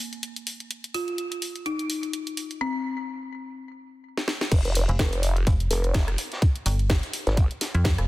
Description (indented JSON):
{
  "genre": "bass house",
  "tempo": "126 BPM",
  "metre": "4/4",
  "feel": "swing 57% on 16ths",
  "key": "F minor",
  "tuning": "A4 = 440 Hz",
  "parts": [
    { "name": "garage drum kit", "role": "drums", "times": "0.1-8.1 s", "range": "crash cymbal, hi-hat, rim click, snare drum", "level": "-30 LUFS", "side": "equal", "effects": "studio reverb" },
    { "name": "folk marimba with hard mallets", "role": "melody", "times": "0.9-3.0 s", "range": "C4 to F4", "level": "-30 LUFS", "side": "left 2 dB", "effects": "digital delay" },
    { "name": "vowel-sweep wobble bass", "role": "bass", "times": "4.5-7.5 s", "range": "F1 to Ab1", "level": "-24 LUFS", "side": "equal", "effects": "chorus, sidechain pumping" },
    { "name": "electronic kick drum", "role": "drums", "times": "4.5-8.0 s", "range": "none", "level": "-21 LUFS", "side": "equal", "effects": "studio reverb" },
    { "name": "vintage drum kit", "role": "drums", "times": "4.5-8.0 s", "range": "hi-hat, snare drum", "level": "-39 LUFS", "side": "equal", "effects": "none" },
    { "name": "metallic FM bass", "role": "bass", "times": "4.9-8.1 s", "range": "F1 to F2", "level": "-23 LUFS", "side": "equal", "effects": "overdrive, sidechain pumping" }
  ],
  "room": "little or no reverb",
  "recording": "dense, heavily limited modern master",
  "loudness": "-23 LUFS",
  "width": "side -18 dB against mid",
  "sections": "0.0-4.5 A section; 4.5-8.1 B section",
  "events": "drum fill 4.2-4.5; drop 4.5-8.1",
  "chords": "none"
}